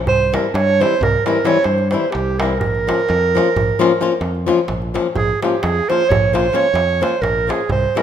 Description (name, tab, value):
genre	balkan folk, Balkan wedding band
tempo	260 BPM (eighths)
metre	11/8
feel	straight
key	Bb dorian sharp4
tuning	A4 = 439 Hz
part	modern bright fingered electric bass	bass	0.0-7.9 s	Bb1 to G2	-22 LUFS	equal	none
part	warm clarinet	melody	0.1-8.0 s	G4 to Db5	-17 LUFS	right 4 dB	none
part	darbuka	percussion	0.1-8.0 s	none	-23 LUFS	right 2 dB	none
part	flamenco guitar	accompaniment	0.3-8.0 s	E3 to F4	-20 LUFS	left 6 dB	none
room	moderate recital hall reverb, RT60 1.5 s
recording	minimal, uncompressed stereo recording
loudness	-14 LUFS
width	side -9 dB against mid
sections	0.0-5.1 A section; 5.1-8.0 B section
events	none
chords	0.1 C; 2.6 Bbm